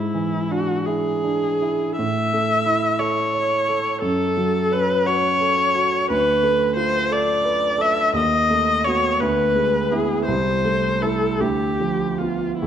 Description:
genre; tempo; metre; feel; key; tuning
classical, romantic duo for viola and grand piano; 48-61 BPM (dotted quarters); 6/8; rubato; unclear; A4 = 440 Hz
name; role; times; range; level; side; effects
warm viola; melody; 0.0-12.7 s; E4 to E5; -20 LUFS; left 1 dB; none
warm grand piano; accompaniment; 0.0-12.7 s; C2 to C#5; -22 LUFS; right 2 dB; none
room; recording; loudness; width
moderate scoring stage reverb, RT60 1.6 s; dark, warm production; -18 LUFS; side -9 dB against mid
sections
0.0-12.7 A section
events
none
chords
0.0 E7/G#; 2.0 A; 4.0 F#m; 6.1 Bm7b5/D; 8.2 B7/D#; 9.2 E7/D; 10.3 Am/C; 11.4 Bdim/D

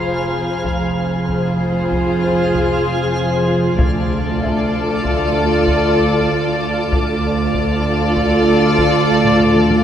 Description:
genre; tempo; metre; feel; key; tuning
cinematic, suspense film score; 96 BPM; 5/4; straight; unclear; A4 = 440 Hz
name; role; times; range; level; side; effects
warm studio violin section; melody; 0.0-9.8 s; C5 to D5; -22 LUFS; left 3 dB; none
dark studio violin section; second line; 0.0-9.8 s; Ab4 to A4; -23 LUFS; left 2 dB; none
dark studio viola section; accompaniment; 0.0-9.8 s; F4; -21 LUFS; right 2 dB; none
twinkling granular texture; sustained chords; 0.0-9.8 s; F4 to F5; -24 LUFS; left 1 dB; built-in reverb
rich studio double bass section; bass; 0.0-9.8 s; F1 to D2; -21 LUFS; right 2 dB; none
warm studio cello section; bass; 0.0-9.8 s; D2 to F2; -21 LUFS; right 1 dB; none
dark grand piano; texture; 0.0-9.8 s; C5 to E5; -32 LUFS; left 2 dB; none
rich studio violin section; texture; 0.0-9.7 s; Ab5 to D6; -31 LUFS; left 3 dB; none
taiko ensemble; drums; 0.6-9.8 s; none; -24 LUFS; left 1 dB; none
room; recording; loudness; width
wet cathedral reverb, RT60 5.4 s; none; -14 LUFS; side -9 dB against mid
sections
0.0-9.8 A section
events
drum fill 9.2-9.8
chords
0.0 Fm; 3.8 Dm

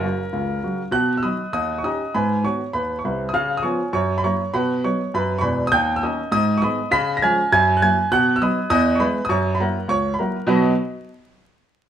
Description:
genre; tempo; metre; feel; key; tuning
jazz, stride piano; 201 BPM; 4/4; swing 61% on 8ths; B major; A4 = 445 Hz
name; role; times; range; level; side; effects
clear grand piano; solo; 0.0-10.7 s; E1 to B6; -18 LUFS; right 1 dB; none
room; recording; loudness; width
wet studio reverb, RT60 0.9 s; heard from further back in the room, vinyl crackle; -18 LUFS; side -9 dB against mid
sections
0.9-10.5 A section; 10.5-11.7 B section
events
none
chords
0.0 F#; 0.9 B; 1.5 D#7; 2.1 G#m7; 3.3 C#7; 3.9 F#7; 4.5 B; 5.7 D#7; 6.3 G#m; 6.9 C#7; 7.5 F#7; 8.1 B; 8.7 E; 9.3 F#7; 10.5 B

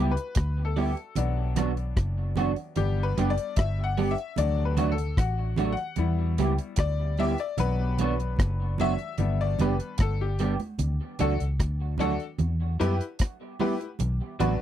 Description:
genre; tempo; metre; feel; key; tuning
roots reggae; 75 BPM; 4/4; straight; D major; A4 = 439 Hz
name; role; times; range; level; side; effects
electric guitar at the edge of break-up; accompaniment; 0.0-14.5 s; F#3 to G4; -30 LUFS; right 5 dB; analog chorus, tape echo
bright grand piano; stabs; 0.0-14.6 s; F#3 to F#5; -32 LUFS; left 8 dB; none
vintage muted fingered electric bass; bass; 0.0-14.6 s; F#1 to F#2; -26 LUFS; equal; none
deep reggae drum kit; drums; 0.2-14.6 s; hi-hat, kick drum, rim click; -27 LUFS; equal; none
congas; percussion; 1.2-14.6 s; none; -35 LUFS; right 6 dB; none
room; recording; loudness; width
little or no reverb; dry, close 1970s-style studio recording; -24 LUFS; side -11 dB against mid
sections
0.0-10.8 A section; 10.8-14.6 B section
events
grand piano solo 0.0-10.8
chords
0.0 Em; 1.2 Bm; 2.8 G; 4.4 D; 6.0 Em; 7.6 Bm; 9.2 G; 10.8 D; 12.4 Em; 14.0 Bm

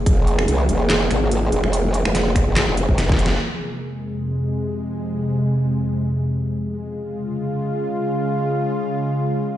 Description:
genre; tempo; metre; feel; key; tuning
heavy wobble dubstep; 144 BPM; 4/4; swing 55% on 16ths, half-time; F minor; A4 = 439 Hz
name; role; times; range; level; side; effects
lush unison pad; sustained chords; 0.0-9.6 s; F2 to Ab4; -22 LUFS; equal; chorus, sidechain pumping
growl bass; bass; 0.1-3.4 s; F1 to C2; -19 LUFS; equal; chorus, overdrive
dubstep drum kit; drums; 0.1-3.3 s; finger snaps, handclaps, hi-hat, snare drum; -23 LUFS; equal; none
electronic kick drum; drums; 0.1-3.2 s; none; -18 LUFS; equal; none
room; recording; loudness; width
light reverb, digital ambience; played on a big sound system in a bare room, stone room reverb, nothing above 10.9 kHz; -18 LUFS; side -12 dB against mid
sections
0.0-3.4 A section; 3.4-9.6 B section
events
drop 0.0-3.4; drum fill 3.0-3.4; band accent 3.3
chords
0.0 F5; 3.4 Fm; 6.7 Db

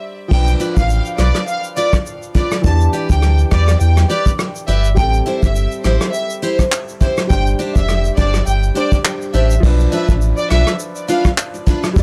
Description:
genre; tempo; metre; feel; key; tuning
dancehall; 103 BPM; 4/4; swing 56% on 16ths; unclear; A4 = 439 Hz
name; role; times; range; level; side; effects
clear concert grand piano; accompaniment; 0.0-12.0 s; E3 to D5; -28 LUFS; equal; none
warm symphonic violin section; melody; 0.3-11.2 s; C5 to A5; -24 LUFS; equal; analog delay
sub bass with octave; bass; 0.3-12.0 s; F1 to E2; -16 LUFS; equal; none
vintage brush drum kit; drums; 0.3-12.0 s; crash cymbal, handclaps, hi-hat, kick drum, rim click, shaker; -20 LUFS; equal; none
picked steel-string acoustic guitar; arpeggios; 0.6-11.9 s; D4 to D5; -24 LUFS; equal; analog delay
room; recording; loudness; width
studio reverb; transformer saturation; -16 LUFS; mono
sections
0.3-9.6 A section; 9.6-12.0 B section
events
break 0.0-0.3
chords
0.3 Bdim; 2.6 Em7; 5.0 Am7; 7.3 Gsus4; 9.6 Bdim

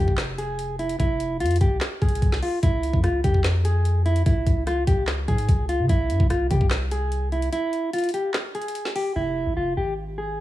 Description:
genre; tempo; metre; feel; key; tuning
hip hop, trap; 147 BPM; 4/4; half-time; F harmonic minor; A4 = 441 Hz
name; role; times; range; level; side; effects
mellow electric guitar; melody; 0.0-10.4 s; E4 to Ab4; -26 LUFS; equal; low-pass filter
long sustained 808-style bass; bass; 0.0-10.4 s; F1 to Db3; -24 LUFS; equal; none
trap drum kit; drums; 0.1-9.1 s; handclaps, hi-hat, kick drum, rim click, snare drum; -24 LUFS; equal; vintage 12-bit sampler grit
room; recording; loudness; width
little or no reverb; small room ambience; -21 LUFS; side -15 dB against mid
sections
0.0-9.2 A section; 9.2-10.4 B section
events
break 7.5-9.2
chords
0.0 Fm; 2.6 Db; 5.9 C; 9.2 Fm

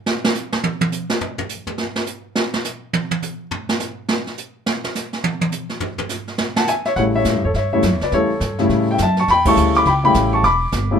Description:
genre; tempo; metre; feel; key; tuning
jazz piano trio; 208 BPM; 4/4; swing 62% on 8ths; A mixolydian; A4 = 440 Hz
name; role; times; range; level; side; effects
jazz brush drum kit; drums; 0.1-11.0 s; brushed snare drum, crash cymbal, hi-hat, kick drum, snare drum, toms; -22 LUFS; right 2 dB; none
warm baby grand piano; melody; 6.6-11.0 s; C#3 to D6; -16 LUFS; left 2 dB; none
upright bass; bass; 7.0-11.0 s; E1 to A2; -20 LUFS; equal; none
room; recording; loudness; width
moderate club reverb, RT60 0.7 s; minimal, uncompressed stereo recording; -17 LUFS; side -7 dB against mid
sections
0.0-7.0 A section; 7.0-11.0 B section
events
drum solo 0.0-7.0; band accent 9.4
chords
0.0 N.C.; 7.0 A7; 10.4 Em7

